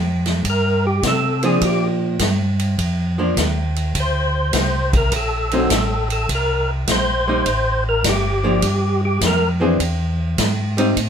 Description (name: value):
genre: soul jazz organ trio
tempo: 103 BPM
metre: 4/4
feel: swing 68% on 8ths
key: G minor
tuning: A4 = 440 Hz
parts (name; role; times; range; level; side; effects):
- mellow tonewheel organ; bass; 0.0-11.1 s; G1 to C3; -21 LUFS; equal; chorus vibrato, stopped rotary speaker
- swinging big-band drum kit; drums; 0.3-11.1 s; hi-hat, kick drum, ride cymbal, snare drum; -22 LUFS; equal; none
- percussive tonewheel organ; melody; 0.5-9.5 s; G4 to C5; -20 LUFS; equal; slow rotary speaker, overdrive, chorus vibrato
- archtop guitar, miked and amplified; accompaniment; 1.4-11.0 s; D3 to Ab4; -19 LUFS; equal; none
room: moderate studio reverb, RT60 0.7 s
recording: minimal, uncompressed stereo recording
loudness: -16 LUFS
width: side -7 dB against mid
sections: 0.0-11.1 A section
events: tonewheel organ solo 0.0-11.1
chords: 0.0 Gm7; 4.0 D7(no3); 6.3 C7(no3); 8.6 G5; 9.8 E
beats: 0.45 1.03 | 1.61 2.20 2.78 3.37 | 3.95 4.54 5.12 5.71 | 6.29 6.88 7.46 8.05 | 8.63 9.21 9.80 10.38 | 10.97